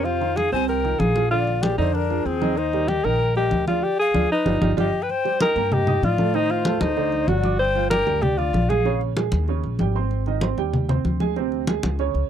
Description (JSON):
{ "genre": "Afro-Cuban jazz", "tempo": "191 BPM", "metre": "4/4", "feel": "straight", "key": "Eb major", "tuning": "A4 = 440 Hz", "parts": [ { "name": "breathy alto saxophone", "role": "melody", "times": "0.0-9.0 s", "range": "C4 to C5", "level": "-22 LUFS", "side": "left 1 dB", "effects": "none" }, { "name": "breathy mellow jazz flute", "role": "second line", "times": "0.0-9.0 s", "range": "Ab4 to Ab5", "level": "-28 LUFS", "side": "left 16 dB", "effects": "none" }, { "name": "warm upright piano", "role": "accompaniment", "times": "0.0-12.3 s", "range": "C3 to Eb6", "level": "-27 LUFS", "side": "right 19 dB", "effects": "none" }, { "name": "upright bass", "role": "bass", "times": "0.0-12.3 s", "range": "G1 to A2", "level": "-25 LUFS", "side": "equal", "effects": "none" }, { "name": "congas", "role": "percussion", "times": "0.1-12.3 s", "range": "none", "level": "-26 LUFS", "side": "left 1 dB", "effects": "none" } ], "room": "little or no reverb", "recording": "dry, close 1970s-style studio recording", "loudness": "-19 LUFS", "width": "side -9 dB against mid", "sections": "0.0-5.1 A section; 5.1-12.3 B section", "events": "band accent 3.8-5.1", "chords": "0.1 Fm9; 1.3 Bb9; 2.6 Eb69; 3.8 Ddim; 4.5 G7b13; 5.1 Cm9; 6.3 Adim; 7.0 D7b9; 7.6 Gm7; 8.9 Bbm7; 9.5 Eb7; 10.1 Abmaj7; 11.4 Abadd11" }